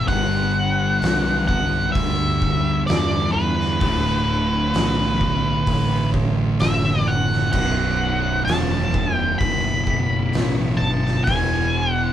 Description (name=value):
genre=stoner and doom metal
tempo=64 BPM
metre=4/4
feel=straight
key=B minor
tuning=A4 = 442 Hz
part: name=octave-fuzz lead guitar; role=melody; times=0.0-12.1 s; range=B4 to B5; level=-23 LUFS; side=equal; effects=distortion
part: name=fuzz guitar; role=riff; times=0.0-12.1 s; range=B1 to G3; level=-26 LUFS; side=left 5 dB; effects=distortion
part: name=thick fuzz guitar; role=riff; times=0.0-12.1 s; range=B1 to G3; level=-24 LUFS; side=right 4 dB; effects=distortion
part: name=fuzz fingered electric bass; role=bass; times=0.0-12.1 s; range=B0 to E2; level=-25 LUFS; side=equal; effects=overdrive
part: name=oversized low-tuned drum kit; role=drums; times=0.1-11.5 s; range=crash cymbal, hi-hat, kick drum, snare drum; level=-25 LUFS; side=equal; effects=none
room=moderate large studio reverb, RT60 0.9 s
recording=band playing live in one room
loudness=-18 LUFS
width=side -11 dB against mid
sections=0.0-12.1 A section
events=none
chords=0.1 G; 3.8 D; 7.5 B5; 11.3 E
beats=| 0.09 1.02 1.95 2.89 | 3.82 4.75 5.68 6.62 | 7.55 8.48 9.41 10.34 | 11.28